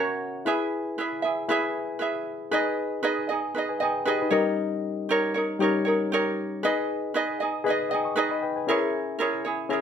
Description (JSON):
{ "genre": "acoustic pop", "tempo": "117 BPM", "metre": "4/4", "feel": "swing 55% on 16ths", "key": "G# harmonic minor", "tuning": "A4 = 440 Hz", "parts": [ { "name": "barky reed electric piano", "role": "accompaniment", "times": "0.0-9.8 s", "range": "G3 to D#6", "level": "-28 LUFS", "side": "left 6 dB", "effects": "overdrive" }, { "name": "ukulele", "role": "accompaniment", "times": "0.0-9.8 s", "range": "C#4 to E5", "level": "-26 LUFS", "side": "right 3 dB", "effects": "none" } ], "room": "moderate studio reverb, RT60 0.8 s", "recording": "none", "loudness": "-24 LUFS", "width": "side -8 dB against mid", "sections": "0.0-2.5 A section; 2.5-9.8 B section", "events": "none", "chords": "0.5 E; 2.5 G#m; 4.3 D#7/G; 6.6 G#m; 8.7 A#m7b5" }